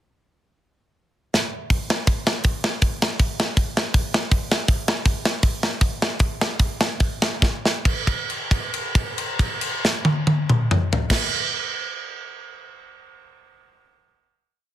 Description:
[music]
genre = punk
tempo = 137-161 BPM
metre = 4/4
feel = straight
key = none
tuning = none
[part]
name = tight metal drum kit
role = drums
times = 1.3-11.2 s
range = crash cymbal, hi-hat, kick drum, snare drum, toms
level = -20 LUFS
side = equal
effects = soft clipping on kick, soft clipping on snare
[sound]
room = light reverb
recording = dense, heavily limited modern master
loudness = -20 LUFS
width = side -12 dB against mid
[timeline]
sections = 0.2-1.7 pickup bar; 1.7-7.9 verse; 7.9-11.4 final hit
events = drum fill 1.3-1.7, 7.4-7.9; slowing down 4.7-7.9; held note 7.9-11.1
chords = none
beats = | 0.21 0.58 0.95 1.33 | 1.70 2.07 2.44 2.81 | 3.19 3.56 3.93 4.31 | 4.68 5.05 5.43 5.81 | 6.20 6.60 7.01 7.42 | 7.86 8.29 8.73 9.17 | 9.61 10.05 10.49 10.93

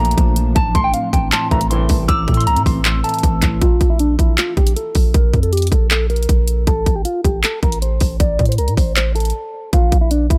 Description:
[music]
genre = hip hop, trap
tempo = 157 BPM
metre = 4/4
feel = half-time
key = unclear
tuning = A4 = 442 Hz
[part]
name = mellow electric guitar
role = melody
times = 0.0-10.4 s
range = D4 to D6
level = -24 LUFS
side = equal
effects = phaser, low-pass filter, delay
[part]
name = tine electric piano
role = accompaniment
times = 0.0-3.6 s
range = A2 to C4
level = -25 LUFS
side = equal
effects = none
[part]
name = granular cloud pad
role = sustained chords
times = 0.0-3.6 s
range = E3 to A4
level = -32 LUFS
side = equal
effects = none
[part]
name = long sustained 808-style bass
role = bass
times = 0.0-10.4 s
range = A1 to A2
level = -20 LUFS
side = equal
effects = none
[part]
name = trap drum kit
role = drums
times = 0.0-10.4 s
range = handclaps, hi-hat, kick drum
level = -19 LUFS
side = equal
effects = overdrive
[part]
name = dark detuned synth bell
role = second line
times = 0.7-3.6 s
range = C6 to E6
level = -29 LUFS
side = equal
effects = chorus, phaser, delay
[part]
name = clear brass ensemble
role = stabs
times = 1.5-2.1 s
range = C2 to E3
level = -27 LUFS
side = equal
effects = none
[sound]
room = little or no reverb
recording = none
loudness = -16 LUFS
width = mono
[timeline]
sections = 0.0-3.6 A section; 3.6-10.4 B section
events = filter sweep on clean electric guitar 3.6-10.4; break 9.3-9.7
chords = 0.0 Bbmaj7; 0.6 Am; 3.6 Bb5; 6.7 Am; 9.7 Bb5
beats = 0.17 | 0.56 0.94 1.32 1.70 | 2.09 2.47 2.85 3.23 | 3.62 4.00 4.38 4.76 | 5.14 5.53 5.91 6.29 | 6.67 7.05 7.44 7.82 | 8.20 8.58 8.96 9.35 | 9.73 10.11

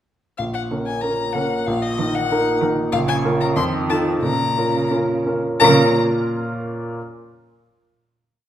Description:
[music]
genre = quick classical-period movement for piano trio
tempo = 86-96 BPM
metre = 2/4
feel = straight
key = Bb minor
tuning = A4 = 438 Hz
[part]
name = rich violin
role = melody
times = 0.4-6.0 s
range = Eb5 to C6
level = -22 LUFS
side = left 6 dB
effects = none
[part]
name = clear grand piano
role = accompaniment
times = 0.4-7.0 s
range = Bb1 to F5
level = -20 LUFS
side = equal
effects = none
[part]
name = rich cello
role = second line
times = 0.7-6.0 s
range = Db3 to Eb3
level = -24 LUFS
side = right 4 dB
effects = none
[sound]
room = wet recital hall reverb, RT60 1.4 s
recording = recorded in a church or concert hall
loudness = -17 LUFS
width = side -11 dB against mid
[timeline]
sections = 0.4-5.6 A section; 5.6-7.0 final chord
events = slowing down 2.3-5.6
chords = 0.4 Bbm; 1.7 Eb5/Bb; 2.9 Bbm; 3.6 F7; 4.2 Bbm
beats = | 0.39 1.03 | 1.67 2.30 | 2.93 3.56 | 4.23 4.92 | 5.61 6.29

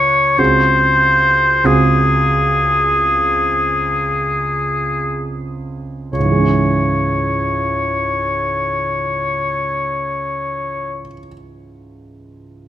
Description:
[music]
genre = classical, romantic duo for oboe and grand piano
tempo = 35-48 BPM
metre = 4/4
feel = rubato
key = C# minor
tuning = A4 = 440 Hz
[part]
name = clear oboe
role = melody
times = 0.0-11.0 s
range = G#4 to C#5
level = -15 LUFS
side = left 2 dB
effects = none
[part]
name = warm concert grand piano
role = accompaniment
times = 0.0-12.7 s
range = C#2 to A4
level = -19 LUFS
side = right 2 dB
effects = none
[sound]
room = moderate concert hall reverb, RT60 2.1 s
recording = close, detailed microphones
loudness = -14 LUFS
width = side -12 dB against mid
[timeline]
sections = 0.0-6.1 A section; 6.1-12.5 B section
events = slowing down 0.0-6.1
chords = 0.4 G#7/C#; 6.1 C#m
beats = | 0.39 1.65 3.00 4.50 | 6.14 7.72 9.30 10.90

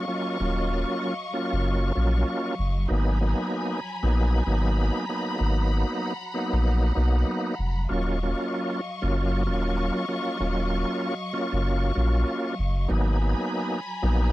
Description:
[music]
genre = hip hop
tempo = 96 BPM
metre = 4/4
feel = swing 60% on 16ths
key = Eb minor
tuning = A4 = 440 Hz
[part]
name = bright tonewheel organ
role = accompaniment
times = 0.0-14.3 s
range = Gb3 to F4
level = -27 LUFS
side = right 1 dB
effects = overdrive, chorus vibrato, fast rotary speaker, high-pass filter, low-pass filter
[part]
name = warm studio string section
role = sustained chords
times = 0.0-14.3 s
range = Gb3 to Db6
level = -33 LUFS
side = left 1 dB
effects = high-pass filter, low-pass filter
[part]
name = warm sub bass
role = bass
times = 0.4-14.3 s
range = Eb1 to Cb2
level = -24 LUFS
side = equal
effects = tube saturation
[sound]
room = little or no reverb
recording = dry, gritty hardware recording, vinyl crackle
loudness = -23 LUFS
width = side -17 dB against mid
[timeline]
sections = 0.0-14.3 A section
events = none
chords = 0.0 Ebm9; 2.9 Abm9; 7.9 Ebm9; 12.9 Abm9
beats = | 0.40 1.03 1.65 2.28 | 2.90 3.53 4.15 4.78 | 5.40 6.03 6.65 7.28 | 7.90 8.53 9.15 9.78 | 10.40 11.03 11.65 12.28 | 12.90 13.53 14.15

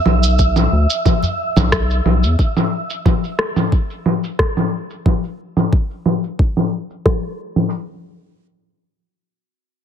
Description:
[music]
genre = organic downtempo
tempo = 90 BPM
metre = 4/4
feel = swing 53% on 16ths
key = unclear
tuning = A4 = 440 Hz
[part]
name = wind-like tuned noise texture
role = texture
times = 0.0-2.4 s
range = E5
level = -23 LUFS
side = right 2 dB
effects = built-in reverb, shimmer reverb
[part]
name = round analog bass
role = bass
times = 0.1-2.4 s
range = B1 to E2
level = -15 LUFS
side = equal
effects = sidechain pumping
[part]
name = electronic congas, shaker and rim click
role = drums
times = 0.1-7.7 s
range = none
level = -18 LUFS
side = equal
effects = low-pass filter on perc, soft clipping on snare, low-pass filter on snare, low-pass filter on hats, low-pass filter on room
[part]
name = electronic kick drum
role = drums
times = 0.4-7.2 s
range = none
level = -16 LUFS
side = equal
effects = none
[part]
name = udu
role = percussion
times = 1.2-1.7 s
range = none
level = -23 LUFS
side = right 1 dB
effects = none
[sound]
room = light reverb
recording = dense, heavily limited modern master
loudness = -15 LUFS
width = side -8 dB against mid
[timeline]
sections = 0.0-7.7 A section; 7.7-9.8 B section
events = filter sweep on drum 0.0-7.7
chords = 0.0 E5; 2.4 N.C.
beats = 0.39 1.05 1.72 | 2.38 3.05 3.72 4.38 | 5.05 5.72 6.38 7.05

